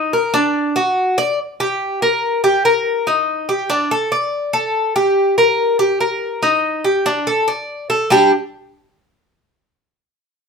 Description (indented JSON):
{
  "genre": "latin",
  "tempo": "143 BPM",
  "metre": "4/4",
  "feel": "straight",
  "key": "G harmonic minor",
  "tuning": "A4 = 440 Hz",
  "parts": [
    { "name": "Cuban tres", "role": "solo", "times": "0.0-8.3 s", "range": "G3 to D5", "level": "-14 LUFS", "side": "equal", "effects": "none" }
  ],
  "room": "moderate studio reverb, RT60 0.7 s",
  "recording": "minimal, uncompressed stereo recording",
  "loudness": "-15 LUFS",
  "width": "side -5 dB against mid",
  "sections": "0.0-1.4 A section; 1.4-8.1 B section; 8.1-9.8 C section",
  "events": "none",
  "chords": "0.0 Bbadd11; 0.6 D; 1.4 Gm; 3.1 Ebmaj7; 3.9 D5; 4.7 Gmadd9; 5.6 Gm; 6.4 Ebmaj7; 7.3 D5; 8.1 G5",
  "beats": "0.13 0.55 0.97 | 1.39 1.81 2.23 2.65 | 3.07 3.49 3.91 4.33 | 4.75 5.17 5.59 6.01 | 6.43 6.85 7.27 7.69 | 8.12"
}